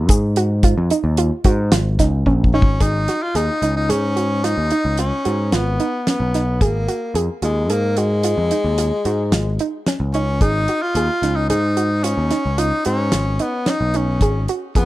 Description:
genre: progressive instrumental, band music in an uneven meter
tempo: 111 BPM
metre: 7/4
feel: straight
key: G# dorian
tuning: A4 = 438 Hz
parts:
  - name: soft round pluck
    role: arpeggios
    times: 0.0-14.9 s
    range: C#4 to G#4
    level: -24 LUFS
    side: right 3 dB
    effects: chorus, plate reverb
  - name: overdriven picked electric bass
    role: bass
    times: 0.0-14.9 s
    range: G#1 to G#2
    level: -19 LUFS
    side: equal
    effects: none
  - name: damped 70s drum kit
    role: drums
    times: 0.1-14.9 s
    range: hi-hat, kick drum, snare drum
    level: -19 LUFS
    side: equal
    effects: none
  - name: tube shaker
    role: percussion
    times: 0.1-2.2 s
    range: none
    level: -31 LUFS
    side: left 6 dB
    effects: none
  - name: breathy tenor saxophone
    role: melody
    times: 2.5-14.9 s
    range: G#3 to E#4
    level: -21 LUFS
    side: left 1 dB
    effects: plate reverb, digital delay
room: light reverb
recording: dark, warm production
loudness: -16 LUFS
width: side -16 dB against mid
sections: 0.0-2.8 A section; 2.8-14.9 B section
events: drum fill 2.3-2.8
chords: 0.0 A#m7 (rootless); 2.8 G#m; 6.6 A#m7/G#; 10.4 G#5; 14.2 A#m7/G# (rootless)

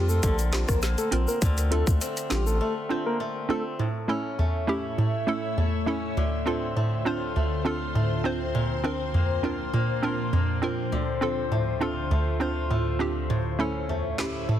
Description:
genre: dancehall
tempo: 101 BPM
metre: 4/4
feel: straight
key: D minor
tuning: A4 = 442 Hz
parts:
  - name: soft octave-layered synth lead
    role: melody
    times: 0.0-3.6 s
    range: G4 to Bb4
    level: -30 LUFS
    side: left 1 dB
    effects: chorus, tape echo
  - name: hollow square pluck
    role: accompaniment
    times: 0.0-14.6 s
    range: D2 to C5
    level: -27 LUFS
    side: right 1 dB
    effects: chorus
  - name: picked swing-style acoustic guitar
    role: arpeggios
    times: 0.0-14.6 s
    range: A2 to F4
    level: -32 LUFS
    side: left 2 dB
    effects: tape echo
  - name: saturated sub bass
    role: bass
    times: 0.0-2.6 s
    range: A1 to F2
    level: -25 LUFS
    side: equal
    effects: none
  - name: egg shaker and timbales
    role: percussion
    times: 0.1-2.6 s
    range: none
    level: -37 LUFS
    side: left 6 dB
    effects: none
  - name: island pop drum kit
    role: drums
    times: 0.2-2.5, 14.2-14.3 s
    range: handclaps, hi-hat, kick drum, rim click, snare drum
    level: -27 LUFS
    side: equal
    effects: none
  - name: ethereal airy pad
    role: sustained chords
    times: 4.5-14.6 s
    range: D2 to E5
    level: -31 LUFS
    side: left 2 dB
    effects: ensemble chorus, built-in reverb, phaser
room: light reverb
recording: dense, heavily limited modern master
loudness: -24 LUFS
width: side -10 dB against mid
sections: 0.0-3.8 A section; 3.8-14.6 B section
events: break 2.6-3.8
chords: 0.0 Bbadd9; 1.4 Dm7; 3.8 A; 6.2 Dm7; 8.5 Bbadd9; 10.9 Dm7; 13.3 A

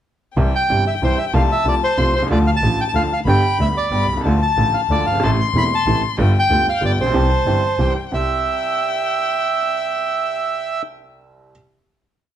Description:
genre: tango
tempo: 186 BPM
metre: 3/4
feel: rubato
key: C major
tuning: A4 = 440 Hz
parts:
  - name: warm violin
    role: second line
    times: 0.4-10.8 s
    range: G5 to C6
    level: -24 LUFS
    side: left 7 dB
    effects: none
  - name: bright upright piano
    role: accompaniment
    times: 0.4-11.5 s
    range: E1 to G4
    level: -23 LUFS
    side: right 2 dB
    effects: none
  - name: warm double bass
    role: bass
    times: 0.4-8.3 s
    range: E1 to D2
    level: -19 LUFS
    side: equal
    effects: none
  - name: bandoneon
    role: melody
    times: 0.6-10.8 s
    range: C5 to C6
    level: -20 LUFS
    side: right 2 dB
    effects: plate reverb
room: moderate studio reverb, RT60 0.8 s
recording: dark, warm production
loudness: -16 LUFS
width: side -10 dB against mid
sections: 0.4-8.1 A section; 8.1-10.1 final chord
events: none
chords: 0.4 C; 1.3 F/C; 2.3 Dm; 3.3 G; 4.2 Dm; 5.2 Am; 6.2 G7; 7.1 C

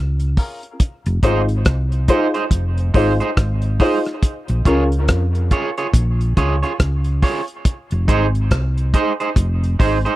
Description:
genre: dub reggae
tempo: 70 BPM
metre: 4/4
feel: swing 61% on 16ths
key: F minor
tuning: A4 = 439 Hz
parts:
  - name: hollow-body short-scale fingered electric bass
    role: bass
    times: 0.0-10.0 s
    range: F1 to F2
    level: -18 LUFS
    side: equal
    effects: none
  - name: cloth-damped thuddy drum kit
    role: drums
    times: 0.2-10.2 s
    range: hi-hat, kick drum, rim click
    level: -16 LUFS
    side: equal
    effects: none
  - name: dark upright piano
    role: stabs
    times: 0.4-4.9 s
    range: Db4 to C5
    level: -22 LUFS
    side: left 2 dB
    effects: high-pass filter, dub echo
  - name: electric guitar at the edge of break-up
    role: accompaniment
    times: 1.2-10.1 s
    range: Eb4 to Db5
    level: -22 LUFS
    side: right 4 dB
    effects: high-pass filter, dub echo
room: little or no reverb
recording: dry, close 1970s-style studio recording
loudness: -16 LUFS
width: side -16 dB against mid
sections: 0.0-10.2 A section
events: break 0.0-0.8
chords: 0.0 Bbm7; 0.8 Fm7; 4.2 Bbm7; 7.7 Fm7

